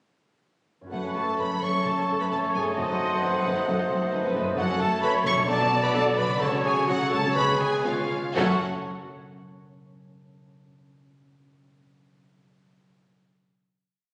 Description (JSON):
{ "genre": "classical, dramatic, fast romantic movement for symphony orchestra", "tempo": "117-134 BPM", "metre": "4/4", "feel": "rubato", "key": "F# minor", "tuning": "A4 = 440 Hz", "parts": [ { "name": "concert harp", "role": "arpeggios", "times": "0.8-8.6 s", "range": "F#2 to A5", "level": "-40 LUFS", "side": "equal", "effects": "none" }, { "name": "warm symphonic violin section", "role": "melody", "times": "0.9-8.6 s", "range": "E#5 to C#6", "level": "-34 LUFS", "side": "equal", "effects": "none" }, { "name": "bright silver concert flute", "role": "second line", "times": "0.9-8.6 s", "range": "E#5 to C#6", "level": "-34 LUFS", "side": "equal", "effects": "none" }, { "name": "mellow clarinet", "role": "second line", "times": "0.9-8.6 s", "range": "E#4 to C#5", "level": "-35 LUFS", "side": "equal", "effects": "none" }, { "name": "warm oboe", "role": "second line", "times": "0.9-8.6 s", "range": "B4 to D#5", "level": "-38 LUFS", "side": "equal", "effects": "none" }, { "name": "warm symphonic violin section", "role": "second line", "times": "0.9-8.6 s", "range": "G#3 to A4", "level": "-37 LUFS", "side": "equal", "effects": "none" }, { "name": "warm bassoon", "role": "accompaniment", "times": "0.9-8.6 s", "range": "F#3 to A3", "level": "-35 LUFS", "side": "equal", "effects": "none" }, { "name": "warm symphonic viola section", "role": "accompaniment", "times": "0.9-8.6 s", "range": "F#3 to D#5", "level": "-35 LUFS", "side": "equal", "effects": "none" }, { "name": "warm French horn section", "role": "sustained chords", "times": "0.9-8.6 s", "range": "A3 to A4", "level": "-38 LUFS", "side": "equal", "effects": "none" }, { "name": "mellow trumpet section", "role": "stabs", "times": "0.9-8.6 s", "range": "C5 to D5", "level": "-32 LUFS", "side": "equal", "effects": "none" }, { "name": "dark symphonic cello section", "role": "bass", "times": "0.9-8.6 s", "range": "F#2 to C#3", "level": "-35 LUFS", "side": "equal", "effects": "none" }, { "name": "rich symphonic double bass section", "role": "bass", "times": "0.9-8.6 s", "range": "F#1 to C#2", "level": "-38 LUFS", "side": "equal", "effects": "none" } ], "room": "wet scoring stage reverb, RT60 1.7 s", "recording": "recorded on a phone in the room, studio reverb", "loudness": "-25 LUFS", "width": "mono", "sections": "0.9-8.4 A section; 8.4-10.3 final chord", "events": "slowing down 3.7-8.4", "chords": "0.9 F#m; 5.5 Bm7; 6.4 F#m/C#; 7.4 C#7; 8.4 F#m" }